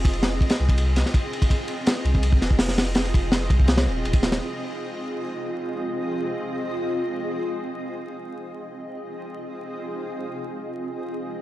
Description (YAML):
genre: drum and bass, jungle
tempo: 165 BPM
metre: 4/4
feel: straight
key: F minor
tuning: A4 = 440 Hz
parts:
  - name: granular cloud pad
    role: sustained chords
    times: 0.0-11.4 s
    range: C4 to Eb5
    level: -29 LUFS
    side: equal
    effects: built-in reverb, vintage 12-bit sampler grit
  - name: soft dub sub bass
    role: bass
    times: 0.0-4.4 s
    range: Eb1 to C2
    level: -23 LUFS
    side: equal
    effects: none
  - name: crunchy breakbeat drum kit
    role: drums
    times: 0.0-4.4 s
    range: hi-hat, kick drum, ride cymbal, snare drum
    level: -21 LUFS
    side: equal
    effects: none
room: light reverb, small room ambience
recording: dry, gritty hardware recording, vinyl crackle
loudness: -22 LUFS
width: side -15 dB against mid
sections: 0.0-4.4 A section; 4.4-11.4 B section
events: drop 0.0-4.4; filter sweep on ambient pad 4.4-11.4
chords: 0.0 Fm7